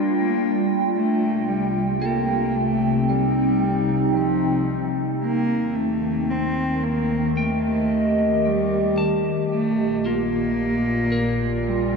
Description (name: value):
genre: ambient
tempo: 56 BPM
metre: 4/4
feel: straight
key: C dorian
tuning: A4 = 443 Hz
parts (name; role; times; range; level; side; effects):
- warbly tape-like pad; sustained chords; 0.0-12.0 s; Bb2 to G5; -22 LUFS; equal; chorus, built-in reverb, phaser
- warm sub bass; bass; 0.9-12.0 s; Bb1 to Eb2; -38 LUFS; equal; tube saturation
- dark cello; melody; 1.0-12.0 s; F3 to C4; -23 LUFS; right 1 dB; ping-pong delay
- electric guitar at the edge of break-up; arpeggios; 2.0-12.0 s; F4 to A5; -35 LUFS; left 2 dB; ping-pong delay
room: wet huge ambient reverb, RT60 7.8 s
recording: dark, warm production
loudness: -19 LUFS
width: side -4 dB against mid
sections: 0.9-12.0 A section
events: fade-in on clean electric guitar 0.9-12.0; fade-in on sub bass 0.9-12.0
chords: 0.0 G7(no3); 0.9 Cm; 5.2 Eb; 9.5 Bb